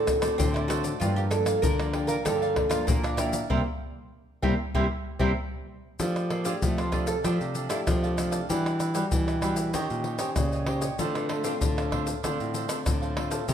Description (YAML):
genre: samba and choro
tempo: 96 BPM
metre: 4/4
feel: straight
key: F major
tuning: A4 = 439 Hz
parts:
  - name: oud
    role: melody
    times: 0.0-12.2 s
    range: E3 to Bb4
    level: -30 LUFS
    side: right 2 dB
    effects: none
  - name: cavaquinho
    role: accompaniment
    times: 0.0-13.5 s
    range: D4 to F5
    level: -34 LUFS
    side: right 5 dB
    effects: none
  - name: nylon-string guitar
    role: accompaniment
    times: 0.0-13.5 s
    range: G2 to C5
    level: -32 LUFS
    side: left 2 dB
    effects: none
  - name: nylon-string guitar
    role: bass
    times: 0.0-13.5 s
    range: G2 to F3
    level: -30 LUFS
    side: equal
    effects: none
  - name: tube shaker, surdo, pandeiro and tamborim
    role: percussion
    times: 0.1-13.5 s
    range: none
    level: -29 LUFS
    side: left 1 dB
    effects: none
room: moderate large studio reverb, RT60 1.4 s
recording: minimal, uncompressed stereo recording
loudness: -24 LUFS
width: side -9 dB against mid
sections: 0.0-6.0 A section; 6.0-13.5 B section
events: band accent 3.5-6.0; oud solo 6.0-13.5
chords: 0.0 D7; 1.0 Gm7; 3.5 C7; 6.0 F69; 8.5 Em9; 9.7 Eb6; 11.0 Dm7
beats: 0.39 | 1.02 1.64 2.26 2.88 | 3.50 4.13 4.75 5.37 | 6.00 6.62 7.25 7.87 | 8.49 9.12 9.74 10.37 | 10.99 11.62 12.24 12.86 | 13.49